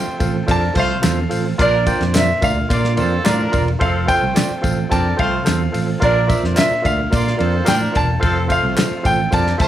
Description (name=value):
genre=uptempo 1960s-style soul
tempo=108 BPM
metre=4/4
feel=straight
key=F major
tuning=A4 = 440 Hz
part: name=bright concert grand piano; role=melody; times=0.0-9.7 s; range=D5 to A5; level=-21 LUFS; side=right 1 dB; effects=plate reverb
part: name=mellow horn section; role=second line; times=0.0-9.7 s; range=F3 to D5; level=-25 LUFS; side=right 2 dB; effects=plate reverb
part: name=barky tine electric piano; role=accompaniment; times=0.0-9.7 s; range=Bb2 to G5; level=-23 LUFS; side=left 1 dB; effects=overdrive, plate reverb
part: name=percussive tonewheel organ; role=sustained chords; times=0.0-9.7 s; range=D3 to A4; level=-29 LUFS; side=right 3 dB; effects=none
part: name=fingered electric bass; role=bass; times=0.1-9.7 s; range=E1 to Bb2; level=-20 LUFS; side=equal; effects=none
part: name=cloth-damped thuddy drum kit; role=drums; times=0.2-9.7 s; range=hi-hat, kick drum, ride cymbal, snare drum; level=-21 LUFS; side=equal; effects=none
part: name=congas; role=percussion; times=0.2-9.7 s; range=none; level=-33 LUFS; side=right 4 dB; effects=none
part: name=tambourine and handclaps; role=percussion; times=0.2-9.7 s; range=none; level=-30 LUFS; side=right 2 dB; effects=none
room=light reverb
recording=small room ambience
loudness=-15 LUFS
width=side -12 dB against mid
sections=0.0-9.7 A section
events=none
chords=0.0 F; 1.6 Bb; 3.8 F; 6.0 Bb; 8.2 F